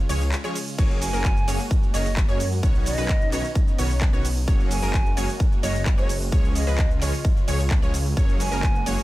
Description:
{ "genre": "EDM, festival progressive house", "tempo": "130 BPM", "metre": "4/4", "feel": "straight", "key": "F# major", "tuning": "A4 = 440 Hz", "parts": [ { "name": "lush unison pad", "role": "sustained chords", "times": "0.0-9.0 s", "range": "C#3 to F#4", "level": "-34 LUFS", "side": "equal", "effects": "chorus, sidechain pumping" }, { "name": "wide unison pluck", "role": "arpeggios", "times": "0.1-9.0 s", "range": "A#4 to C#5", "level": "-35 LUFS", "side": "right 1 dB", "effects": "sidechain pumping, digital delay" }, { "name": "supersaw chords", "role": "riff", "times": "0.1-9.0 s", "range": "D#3 to C#5", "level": "-31 LUFS", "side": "right 1 dB", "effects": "sidechain pumping, digital delay" }, { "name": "wide detuned saw bass", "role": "bass", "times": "0.1-9.0 s", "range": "F#1 to F#2", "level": "-26 LUFS", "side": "equal", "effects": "chorus, sidechain pumping" }, { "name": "big-room dance drum kit", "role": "drums", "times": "0.1-9.0 s", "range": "crash cymbal, handclaps, hi-hat, ride cymbal, shaker", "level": "-32 LUFS", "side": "right 1 dB", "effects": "none" }, { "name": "electronic kick drum", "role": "drums", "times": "0.8-8.7 s", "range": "none", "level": "-21 LUFS", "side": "equal", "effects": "none" }, { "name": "hollow concert flute", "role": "melody", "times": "1.0-9.0 s", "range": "C#5 to G#5", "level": "-31 LUFS", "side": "right 1 dB", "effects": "digital delay" } ], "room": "little or no reverb", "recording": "none", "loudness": "-20 LUFS", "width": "side -17 dB against mid", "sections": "0.0-9.0 A section", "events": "break 0.3-0.8", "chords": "0.0 C#; 0.8 F#add9; 2.6 Badd9; 4.5 F#add9; 6.3 C#; 8.2 F#add9" }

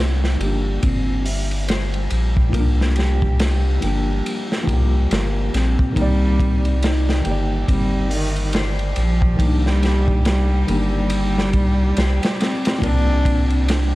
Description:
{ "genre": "trip hop", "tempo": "70 BPM", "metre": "4/4", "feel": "swing 60% on 16ths", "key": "C minor", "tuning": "A4 = 440 Hz", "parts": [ { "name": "felt-muted upright piano", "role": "accompaniment", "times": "0.0-13.9 s", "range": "Eb3 to D5", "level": "-27 LUFS", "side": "left 2 dB", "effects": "tremolo, tape echo" }, { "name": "electric guitar at the edge of break-up", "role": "arpeggios", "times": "0.0-13.9 s", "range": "Bb3 to C5", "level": "-29 LUFS", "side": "equal", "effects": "tape echo" }, { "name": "round analog bass", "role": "bass", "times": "0.0-13.9 s", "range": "G1 to C2", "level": "-19 LUFS", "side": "equal", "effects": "none" }, { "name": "bowed-like drone", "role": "texture", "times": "0.1-13.9 s", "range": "G3 to G4", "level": "-34 LUFS", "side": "right 3 dB", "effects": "none" }, { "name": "crunchy breakbeat drum kit", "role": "drums", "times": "0.2-13.9 s", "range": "hi-hat, kick drum, ride cymbal, snare drum", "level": "-23 LUFS", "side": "equal", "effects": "none" }, { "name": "clear cello", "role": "melody", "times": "6.0-13.6 s", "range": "Eb3 to D4", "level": "-24 LUFS", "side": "equal", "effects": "tape echo" }, { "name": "warm chamber violin section", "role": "sustained chords", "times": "6.0-13.9 s", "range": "G3 to G4", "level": "-32 LUFS", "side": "right 1 dB", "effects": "none" } ], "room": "studio ambience", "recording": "dark, warm production, vinyl crackle", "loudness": "-16 LUFS", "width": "side -18 dB against mid", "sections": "0.0-13.9 A section", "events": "none", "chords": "0.0 Gm7; 6.0 Cm9; 12.8 Gm7" }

